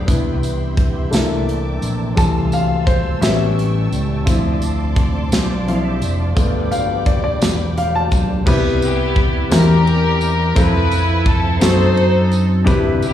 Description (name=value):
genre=slow gospel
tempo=57 BPM (dotted quarters)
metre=6/8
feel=straight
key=C major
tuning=A4 = 440 Hz
part: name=warm baby grand piano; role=accompaniment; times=0.0-13.1 s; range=G2 to A5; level=-20 LUFS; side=left 3 dB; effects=slapback echo
part: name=percussive tonewheel organ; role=sustained chords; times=0.0-13.1 s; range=C3 to F5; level=-27 LUFS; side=right 4 dB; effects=overdrive, chorus vibrato, slow rotary speaker
part: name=warm studio string section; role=sustained chords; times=0.0-8.4 s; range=D5 to E6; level=-32 LUFS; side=equal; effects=none
part: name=fingered electric bass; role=bass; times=0.0-13.1 s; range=E1 to F#2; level=-19 LUFS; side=equal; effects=none
part: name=modern studio drum kit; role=drums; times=0.1-13.1 s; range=crash cymbal, hi-hat, kick drum, ride cymbal, snare drum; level=-18 LUFS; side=equal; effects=none
part: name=tambourine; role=percussion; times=0.1-13.1 s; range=none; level=-33 LUFS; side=right 4 dB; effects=none
part: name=warm studio string section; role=melody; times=8.8-13.1 s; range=B3 to C5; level=-19 LUFS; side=left 2 dB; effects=slapback echo
room=light reverb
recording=live gig heard through the venue's PA, recital hall reverb, small room reverb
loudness=-14 LUFS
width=side -11 dB against mid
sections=0.0-8.5 A section; 8.5-13.1 B section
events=grand piano solo 0.0-8.5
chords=0.1 Cmaj7; 1.1 C13; 2.2 Fmaj7/C; 3.2 A7; 4.3 Dm7; 6.4 G7; 8.5 Cmaj7; 9.5 C7/E; 10.6 Fmaj7; 11.6 F#dim7